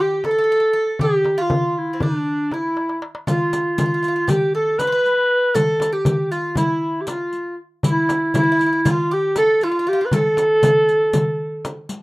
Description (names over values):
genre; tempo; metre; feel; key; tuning
Turkish makam ensemble; 237 BPM (eighths); 9/8; straight; unclear; A4 = 440 Hz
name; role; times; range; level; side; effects
breathy clarinet; melody; 0.0-11.9 s; D4 to B4; -18 LUFS; equal; none
Greek bouzouki; second line; 0.0-11.9 s; C4 to C5; -30 LUFS; right 2 dB; none
darbuka; percussion; 0.2-11.8 s; none; -25 LUFS; equal; none
frame drum; percussion; 0.2-11.8 s; none; -24 LUFS; left 1 dB; none
riq; percussion; 3.3-12.0 s; none; -29 LUFS; left 2 dB; none
room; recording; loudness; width
moderate small room reverb, RT60 0.6 s; rough home demo mix; -16 LUFS; side -21 dB against mid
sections
0.0-12.0 A section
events
drum fill 2.8-3.3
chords
none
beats
0.24 0.49 0.74 | 1.00 1.25 1.50 1.76 2.01 2.27 2.52 2.77 3.03 | 3.28 3.53 3.79 4.04 4.29 4.55 4.80 5.05 5.31 | 5.56 5.82 6.07 6.32 6.58 6.83 7.08 7.34 7.59 | 7.84 8.10 8.35 8.61 8.86 9.11 9.37 9.62 9.87 | 10.13 10.38 10.63 10.89 11.14 11.40 11.65 11.90